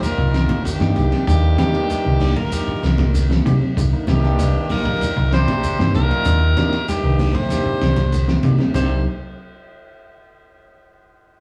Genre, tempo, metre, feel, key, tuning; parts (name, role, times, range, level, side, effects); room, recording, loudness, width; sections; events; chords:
afrobeat; 96 BPM; 4/4; straight; C minor; A4 = 444 Hz
edgy alto saxophone; melody; 0.0-9.0 s; G4 to C5; -27 LUFS; equal
bright trombone; second line; 0.0-9.0 s; Eb3 to G3; -34 LUFS; equal
brilliant trombone section; second line; 0.0-9.0 s; G2 to C3; -32 LUFS; equal
bell-like tine electric piano; accompaniment; 0.0-9.0 s; Bb3 to Bb4; -31 LUFS; equal
electric guitar at the edge of break-up; arpeggios; 0.0-8.9 s; C3 to D4; -30 LUFS; equal
cloth-damped thuddy drum kit; drums; 0.0-8.9 s; crash cymbal, hi-hat, kick drum, ride cymbal, snare drum; -27 LUFS; equal
shekere; percussion; 0.0-8.9 s; -33 LUFS; equal
hollow-body short-scale fingered electric bass; bass; 0.2-9.0 s; Bb1 to C3; -21 LUFS; equal
congas; percussion; 0.5-8.9 s; -29 LUFS; equal
wet stone room reverb, RT60 1.2 s; rough rehearsal-room recording, tube saturation, small room ambience; -18 LUFS; mono
0.0-8.7 A section; 8.7-11.2 B section
drum fill 8.3-8.7
0.0 Cm9